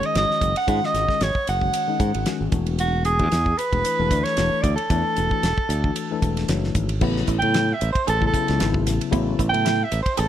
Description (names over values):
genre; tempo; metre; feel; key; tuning
electric jazz fusion; 114 BPM; 4/4; swing 55% on 16ths; A major from 7.0 s; A4 = 440 Hz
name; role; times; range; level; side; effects
mellow soprano saxophone; melody; 0.0-10.3 s; F#4 to G5; -23 LUFS; right 2 dB; plate reverb
mellow tine electric piano; accompaniment; 0.0-10.3 s; C#3 to Db5; -27 LUFS; left 8 dB; plate reverb
damped 70s drum kit; drums; 0.0-10.3 s; crash cymbal, hi-hat, kick drum, ride cymbal, snare drum; -26 LUFS; equal; none
modern bright fingered electric bass; bass; 0.2-10.3 s; E1 to A2; -23 LUFS; equal; none
clean electric guitar; stabs; 7.0-10.3 s; B3 to G#4; -30 LUFS; right 14 dB; ensemble chorus, plate reverb
room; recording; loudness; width
light reverb; none; -19 LUFS; side -11 dB against mid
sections
0.0-7.0 A section; 7.0-10.3 B section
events
tine electric piano fill 6.2-7.0; soprano saxophone solo 7.0-10.3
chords
0.0 Ab7sus4; 2.5 E9sus4; 7.0 Amaj9